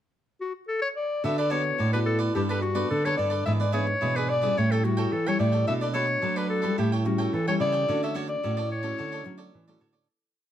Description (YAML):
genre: samba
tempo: 108 BPM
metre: 4/4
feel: straight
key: D major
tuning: A4 = 443 Hz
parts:
  - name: clear clarinet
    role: melody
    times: 0.4-9.5 s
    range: F#4 to E5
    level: -27 LUFS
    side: left 2 dB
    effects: none
  - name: cavaquinho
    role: accompaniment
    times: 1.2-10.1 s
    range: D4 to G5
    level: -34 LUFS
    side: right 5 dB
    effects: none
  - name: nylon-string guitar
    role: accompaniment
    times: 1.2-10.1 s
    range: G#2 to A4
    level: -32 LUFS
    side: left 4 dB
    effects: none
  - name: nylon-string guitar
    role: bass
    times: 1.2-10.1 s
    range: G2 to F#3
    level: -27 LUFS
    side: right 2 dB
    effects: none
room: light reverb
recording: none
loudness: -24 LUFS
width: side -11 dB against mid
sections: 0.0-1.2 pickup bar; 1.2-10.1 A section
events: fade-out 7.9-10.1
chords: 0.0 N.C.; 1.2 D6; 2.3 Gadd9; 3.5 E7/G#; 4.6 A7; 5.7 Bm7; 6.8 A7; 7.9 Dmaj7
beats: 0.12 0.68 | 1.24 1.79 2.35 2.90 | 3.46 4.01 4.57 5.12 | 5.67 6.23 6.78 7.33 | 7.88 8.43 8.99 9.54